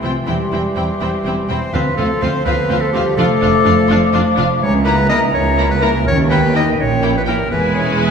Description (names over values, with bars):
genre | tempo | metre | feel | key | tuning
cinematic, playful, whimsical film cue | 83 BPM (dotted quarters) | 6/8 | straight | unclear | A4 = 440 Hz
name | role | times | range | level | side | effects
dark studio violin section | melody | 0.0-8.1 s | F5 to A#5 | -25 LUFS | left 3 dB | none
clear clarinet | second line | 0.0-8.1 s | F4 to D#5 | -20 LUFS | left 2 dB | none
mellow large flute ensemble | second line | 0.0-8.1 s | G5 to D6 | -23 LUFS | left 5 dB | none
warm studio violin section | second line | 0.0-8.1 s | E4 to F4 | -28 LUFS | left 1 dB | none
mellow bassoon | accompaniment | 0.0-8.1 s | E3 to F3 | -24 LUFS | right 6 dB | none
rich studio viola section | accompaniment | 0.0-8.1 s | G#3 to D4 | -25 LUFS | right 2 dB | none
dark French horn section | sustained chords | 0.0-8.1 s | F3 to D#4 | -22 LUFS | left 2 dB | none
concert harp | arpeggios | 0.0-8.1 s | C3 to D6 | -24 LUFS | left 4 dB | none
rich studio double bass section | bass | 0.0-8.1 s | E1 to D#2 | -22 LUFS | right 3 dB | none
warm studio cello section | bass | 0.0-8.1 s | C#2 to C3 | -21 LUFS | right 3 dB | none
room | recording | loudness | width
wet recital hall reverb, RT60 1.5 s | recorded in a church or concert hall | -13 LUFS | side -6 dB against mid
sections
0.0-8.1 A section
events
none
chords
0.3 C/E; 1.7 Dm7; 3.2 Dm/F; 4.6 A#dim/C#; 6.1 D#7b9; 7.5 E